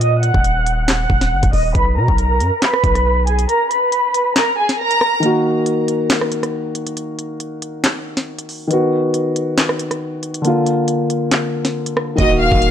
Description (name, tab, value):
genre	hip hop, drill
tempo	138 BPM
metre	4/4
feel	half-time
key	Eb harmonic minor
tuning	A4 = 440 Hz
part	warm studio violin section	melody	0.0-5.2, 12.2-12.7 s	Ab4 to Gb6	-17 LUFS	right 1 dB	low-pass filter, tape echo
part	long sustained 808-style bass	bass	0.0-3.5, 12.2-12.7 s	Eb1 to B2	-18 LUFS	equal	none
part	drill drum kit	drums	0.0-12.7 s	handclaps, hi-hat, kick drum, rim click, snare drum	-18 LUFS	equal	none
part	dark grand piano	accompaniment	5.2-12.7 s	D3 to Gb4	-18 LUFS	left 1 dB	low-pass filter
room	small room ambience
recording	none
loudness	-14 LUFS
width	side -9 dB against mid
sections	0.0-12.7 A section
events	kick muted 3.5-5.2; break 5.2-12.2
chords	0.0 Ebm; 1.8 B5; 3.5 Abmadd9; 5.2 Ebm; 8.7 B; 10.4 Bb; 12.2 Ebm